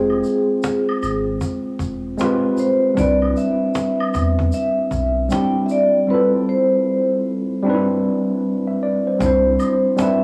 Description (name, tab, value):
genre	lo-fi hip hop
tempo	77 BPM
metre	4/4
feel	swing 62% on 16ths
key	C major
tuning	A4 = 440 Hz
part	vibraphone with soft mallets	melody	0.0-10.2 s	Ab4 to G5	-22 LUFS	equal	low-pass filter, cassette tape, tape echo
part	tine electric piano	accompaniment	0.0-10.2 s	G3 to G5	-22 LUFS	equal	cassette tape, low-pass filter
part	warm sub bass	bass	0.0-9.6 s	E1 to E2	-26 LUFS	equal	none
part	woodblock and tube shaker	percussion	0.1-10.2 s	none	-34 LUFS	equal	none
part	cajon	drums	0.3-10.2 s	none	-31 LUFS	equal	vintage 12-bit sampler grit, cassette tape
room	light reverb, small room ambience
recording	home recording on cassette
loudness	-19 LUFS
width	mono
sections	0.0-9.2 A section; 9.2-10.2 B section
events	none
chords	0.0 Fmadd9; 3.0 Cmaj9; 6.1 Fmaj9; 7.6 Cmaj9